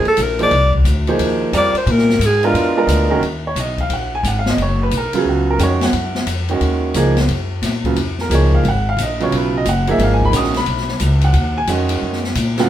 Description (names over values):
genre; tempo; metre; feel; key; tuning
modal jazz; 177 BPM; 4/4; swing 65% on 8ths; Eb minor from 3.2 s; A4 = 439 Hz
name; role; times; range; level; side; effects
breathy alto saxophone; melody; 0.0-2.9 s; F4 to D5; -16 LUFS; equal; none
upright bass; bass; 0.0-12.7 s; Gb1 to Bb2; -18 LUFS; equal; none
open jazz drum kit; drums; 0.1-12.6 s; hi-hat, kick drum, ride cymbal, snare drum; -23 LUFS; left 2 dB; none
clear baby grand piano; accompaniment; 0.4-12.7 s; Db3 to Eb6; -18 LUFS; right 3 dB; none
room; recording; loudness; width
moderate studio reverb, RT60 0.7 s; band playing live in one room; -14 LUFS; side -11 dB against mid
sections
0.0-3.2 A section; 3.2-12.7 A section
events
alto saxophone solo 0.0-3.2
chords
0.0 Fm11; 1.9 Bb7b9; 3.2 Ebm11